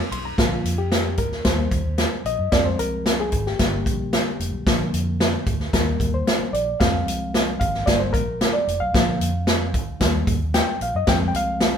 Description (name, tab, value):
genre	uptempo 1960s-style soul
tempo	112 BPM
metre	4/4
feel	straight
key	Bb mixolydian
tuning	A4 = 442 Hz
part	reed electric piano	accompaniment	0.0-11.8 s	D3 to D6	-25 LUFS	left 2 dB	none
part	vintage muted fingered electric bass	bass	0.1-11.8 s	F1 to Gb2	-26 LUFS	right 1 dB	none
part	swinging big-band drum kit	drums	0.1-11.7 s	hi-hat, kick drum, ride cymbal, snare drum	-21 LUFS	equal	none
room	moderate studio reverb, RT60 0.9 s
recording	band playing live in one room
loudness	-19 LUFS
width	side -8 dB against mid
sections	0.4-11.8 A section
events	reed electric piano solo 0.4-11.8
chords	0.4 Bb; 1.5 Eb; 2.5 Fm; 3.6 Gm; 4.7 Bb; 5.7 Eb; 6.8 Fm; 7.9 Gm; 8.9 Bb; 10.0 Eb; 11.1 Fm